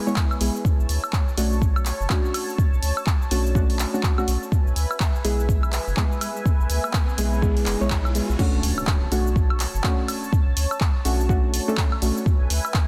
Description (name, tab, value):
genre	deep house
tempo	124 BPM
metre	4/4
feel	swing 60% on 16ths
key	B dorian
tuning	A4 = 438 Hz
part	warm analog pad	sustained chords	0.0-12.9 s	B4 to A5	-36 LUFS	equal	chorus, sidechain pumping
part	deep mellow chord stab	stabs	0.0-12.2 s	G#3 to C#5	-30 LUFS	equal	lush chorus, sidechain pumping, tape echo
part	punchy analog drum machine	drums	0.1-12.9 s	crash cymbal, handclaps, hi-hat, shaker, woodblock	-31 LUFS	equal	none
part	electronic kick drum	drums	0.2-12.9 s	none	-23 LUFS	equal	none
part	round analog bass	bass	0.4-12.6 s	F#1 to D2	-26 LUFS	equal	sidechain pumping
part	riser and impact	sound effects	6.3-10.3 s	none	-40 LUFS	equal	none
room	light reverb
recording	dense, heavily limited modern master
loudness	-22 LUFS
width	mono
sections	0.0-8.4 A section; 8.4-12.9 B section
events	riser 6.3-8.4; drop 8.4-12.9; impact 8.4-10.3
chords	0.0 E; 0.6 Bm9; 4.5 E; 8.4 Bm9; 12.3 E